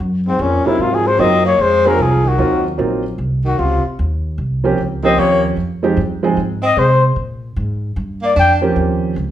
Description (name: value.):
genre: jazz, small-group swing and bop.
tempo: 151 BPM.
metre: 4/4.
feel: swing 66% on 8ths.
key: unclear.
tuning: A4 = 439 Hz.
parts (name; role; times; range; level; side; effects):
upright bass; bass; 0.0-9.3 s; Bb1 to C3; -19 LUFS; equal; none.
breathy trumpet; melody; 0.3-8.5 s; C4 to G5; -15 LUFS; left 4 dB; none.
clear tenor saxophone; second line; 0.3-8.6 s; Ab2 to D4; -21 LUFS; right 2 dB; none.
warm baby grand piano; accompaniment; 0.7-9.1 s; F3 to Ab4; -17 LUFS; right 3 dB; none.
room: wet large studio reverb, RT60 0.8 s.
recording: band playing live in one room.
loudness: -13 LUFS.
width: side -11 dB against mid.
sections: 0.0-9.3 A section.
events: none.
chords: 0.0 Ab13; 4.0 Eb13; 5.6 Fm7; 7.2 Bb5; 8.8 Eb13.